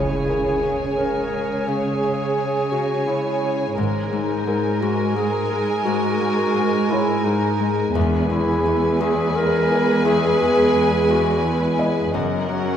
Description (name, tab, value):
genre	cinematic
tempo	86 BPM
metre	3/4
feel	straight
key	C# dorian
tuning	A4 = 441 Hz
part	rich studio violin section	melody	0.0-12.8 s	F#5 to G#5	-31 LUFS	left 3 dB	none
part	rich studio violin section	second line	0.0-12.8 s	A#4 to C#5	-27 LUFS	left 1 dB	none
part	warm clarinet	second line	0.0-12.8 s	D#4 to A#4	-24 LUFS	equal	none
part	rich studio viola section	accompaniment	0.0-12.8 s	G#3 to C#4	-26 LUFS	right 2 dB	none
part	warbly tape-like pad	sustained chords	0.0-12.8 s	B3 to G#5	-26 LUFS	equal	chorus, built-in reverb
part	Celtic harp	riff	0.0-12.8 s	E2 to C#4	-27 LUFS	left 5 dB	none
part	rich studio cello section	bass	0.0-12.8 s	E2 to C#3	-26 LUFS	right 3 dB	none
part	warm studio double bass section	bass	0.0-0.2, 3.8-4.4, 8.0-8.6, 12.1-12.8 s	E1 to C#2	-28 LUFS	right 2 dB	none
part	impact	sound effects	0.0-1.7 s	none	-33 LUFS	equal	none
part	warm grand piano	texture	0.0-12.8 s	G#4 to D#5	-32 LUFS	left 1 dB	none
room	wet scoring stage reverb, RT60 1.9 s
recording	none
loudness	-18 LUFS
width	side -9 dB against mid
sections	0.0-12.8 A section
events	band accent 0.0; impact 0.0-1.7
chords	0.0 C#m; 3.8 G#sus2; 8.0 E; 12.1 F#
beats	0.29 0.98 | 1.68 2.38 3.08 | 3.77 4.47 5.17 | 5.87 6.57 7.26 | 7.96 8.66 9.36 | 10.05 10.75 11.45 | 12.15